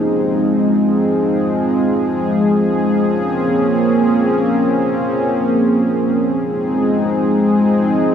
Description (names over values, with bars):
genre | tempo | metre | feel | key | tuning
hip hop | free time | none | none | Bb minor | A4 = 440 Hz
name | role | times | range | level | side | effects
warm analog pad | solo | 0.0-8.1 s | F3 to Ab4 | -13 LUFS | equal | chorus
room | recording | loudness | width
moderate lush hall reverb, RT60 2.7 s | small room ambience | -13 LUFS | side -8 dB against mid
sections
0.0-6.4 A section; 6.4-8.1 B section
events
none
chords
0.0 Fm7; 3.1 Bbm9; 6.4 Ab6